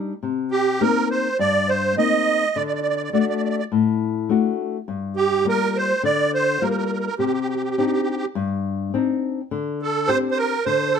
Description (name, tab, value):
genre	italian folk, Italian serenade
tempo	104 BPM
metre	4/4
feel	straight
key	unclear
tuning	A4 = 440 Hz
part	flamenco guitar	accompaniment	0.0-11.0 s	G2 to G4	-22 LUFS	left 6 dB	none
part	musette accordion	melody	0.5-11.0 s	G4 to Eb5	-20 LUFS	right 4 dB	plate reverb
room	moderate small room reverb, RT60 0.5 s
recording	none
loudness	-19 LUFS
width	side -7 dB against mid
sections	0.0-11.0 A section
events	none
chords	0.2 Cm7; 2.5 D; 4.9 Gm7; 7.2 Cmadd9; 9.5 D7sus4